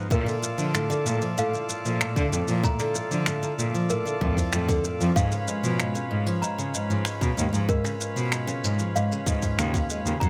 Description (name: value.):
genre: folktronica.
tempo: 95 BPM.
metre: 4/4.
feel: straight.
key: unclear.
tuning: A4 = 438 Hz.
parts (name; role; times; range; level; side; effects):
hand-pumped harmonium; sustained chords; 0.0-10.3 s; Gb3 to D5; -36 LUFS; equal; none.
picked steel-string acoustic guitar; arpeggios; 0.0-10.3 s; Ab2 to Ab3; -31 LUFS; equal; tape echo.
bright cello; bass; 0.0-10.3 s; Eb2 to D3; -30 LUFS; equal; none.
toy piano; second line; 0.1-10.3 s; Bb4 to Bb5; -36 LUFS; equal; vintage 12-bit sampler grit, tape echo.
electronic kick drum; drums; 0.1-10.3 s; none; -28 LUFS; equal; none.
jazz brush drum kit; drums; 0.1-10.3 s; finger snaps, hi-hat, shaker; -33 LUFS; equal; none.
room: light reverb, studio reverb.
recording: none.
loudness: -26 LUFS.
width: mono.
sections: 0.1-10.3 A section.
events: none.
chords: 0.1 Bbmaj7 (rootless); 5.2 Db7.